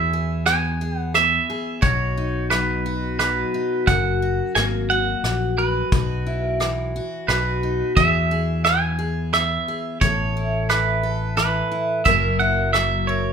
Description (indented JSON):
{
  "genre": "honky-tonk and classic country",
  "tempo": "88 BPM",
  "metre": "3/4",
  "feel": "straight",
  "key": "E major",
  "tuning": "A4 = 440 Hz",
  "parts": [
    { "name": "twangy electric guitar", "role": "second line", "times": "0.0-13.3 s", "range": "B4 to G#5", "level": "-22 LUFS", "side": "right 4 dB", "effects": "none" },
    { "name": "picked steel-string acoustic guitar", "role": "accompaniment", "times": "0.0-13.3 s", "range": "F#2 to A#4", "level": "-26 LUFS", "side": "left 2 dB", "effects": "none" },
    { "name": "fingered electric bass", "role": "bass", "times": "0.0-13.3 s", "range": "F#1 to E2", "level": "-24 LUFS", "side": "equal", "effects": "none" },
    { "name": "soft brush drum kit", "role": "drums", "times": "0.5-12.9 s", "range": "hi-hat, kick drum, rim click", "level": "-23 LUFS", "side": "left 1 dB", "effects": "none" }
  ],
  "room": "light reverb",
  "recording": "minimal, uncompressed stereo recording",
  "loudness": "-18 LUFS",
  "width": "side -7 dB against mid",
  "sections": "0.0-13.3 A section",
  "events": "clean electric guitar solo 0.0-13.3",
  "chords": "0.0 E; 1.8 B; 3.9 F#; 5.9 Bsus4; 7.3 B; 8.0 E; 10.0 Aadd9; 12.1 F#7"
}